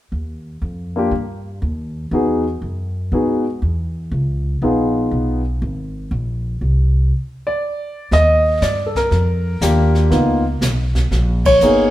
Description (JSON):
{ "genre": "jazz piano trio", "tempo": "120 BPM", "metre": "4/4", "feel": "swing 68% on 8ths", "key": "unclear", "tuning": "A4 = 440 Hz", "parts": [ { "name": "upright bass", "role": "bass", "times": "0.1-11.9 s", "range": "G1 to G#2", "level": "-19 LUFS", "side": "equal", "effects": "none" }, { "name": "warm concert grand piano", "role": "melody", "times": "1.0-11.9 s", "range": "Bb3 to Eb5", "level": "-16 LUFS", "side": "left 1 dB", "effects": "none" }, { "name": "jazz brush drum kit", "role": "drums", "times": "8.1-11.9 s", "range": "brushed snare drum, hi-hat, kick drum, ride cymbal, snare drum", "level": "-24 LUFS", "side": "right 2 dB", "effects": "none" } ], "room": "moderate stone room reverb, RT60 1.3 s", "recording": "band playing live in one room", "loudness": "-16 LUFS", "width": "side -14 dB against mid", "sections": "0.1-8.1 A section; 8.1-11.9 B section", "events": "stop 7.1-8.1; band accent 11.4", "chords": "0.1 Eb; 2.1 Emaj7; 4.1 Db7; 6.1 Bb; 8.1 Ebmaj9; 10.1 Db7sus2" }